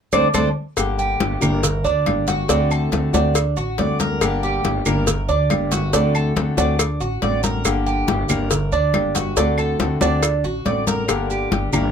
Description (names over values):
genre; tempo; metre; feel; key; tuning
latin, Cuban son and guajira; 140 BPM; 4/4; straight; G harmonic minor; A4 = 440 Hz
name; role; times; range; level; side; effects
nylon-string guitar; accompaniment; 0.1-11.9 s; D3 to G4; -23 LUFS; left 4 dB; none
Cuban tres; arpeggios; 0.1-11.9 s; D4 to D5; -22 LUFS; right 5 dB; none
upright bass; bass; 0.1-11.9 s; G1 to D2; -23 LUFS; equal; none
claves; percussion; 0.1-11.9 s; none; -28 LUFS; left 2 dB; none
congas; percussion; 0.1-11.9 s; none; -25 LUFS; left 2 dB; none
cowbell; percussion; 0.1-11.7 s; none; -25 LUFS; left 6 dB; none
maracas; percussion; 0.1-11.9 s; none; -28 LUFS; right 10 dB; none
room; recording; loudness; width
light reverb; none; -17 LUFS; side -7 dB against mid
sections
0.8-11.9 A section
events
band accent 0.0-0.8; drum fill 0.1-0.8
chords
0.0 D5; 0.8 Gm; 2.5 D7; 4.2 Gm; 5.9 D7; 7.7 Gm; 9.4 D7; 11.1 Gm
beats
0.35 | 0.78 1.21 1.64 2.07 | 2.50 2.93 3.35 3.79 | 4.21 4.64 5.07 5.50 | 5.93 6.36 6.79 7.22 | 7.65 8.08 8.51 8.94 | 9.37 9.80 10.23 10.66 | 11.09 11.52